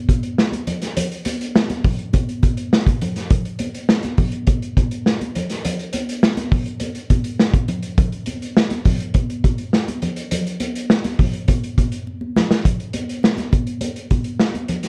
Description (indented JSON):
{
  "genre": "funk",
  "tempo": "103 BPM",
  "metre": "4/4",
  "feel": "straight",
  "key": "none",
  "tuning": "none",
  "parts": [
    { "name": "vintage drum kit", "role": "drums", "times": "0.1-14.9 s", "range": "hi-hat, kick drum, snare drum", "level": "-20 LUFS", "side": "equal", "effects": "none" },
    { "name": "congas", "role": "percussion", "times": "0.1-14.8 s", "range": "none", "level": "-28 LUFS", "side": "equal", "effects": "none" }
  ],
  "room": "moderate studio reverb, RT60 0.6 s",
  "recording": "dark, warm production",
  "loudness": "-20 LUFS",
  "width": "mono",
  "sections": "0.0-12.7 A section; 12.7-14.9 B section",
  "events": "drum fill 12.1-12.7",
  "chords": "none"
}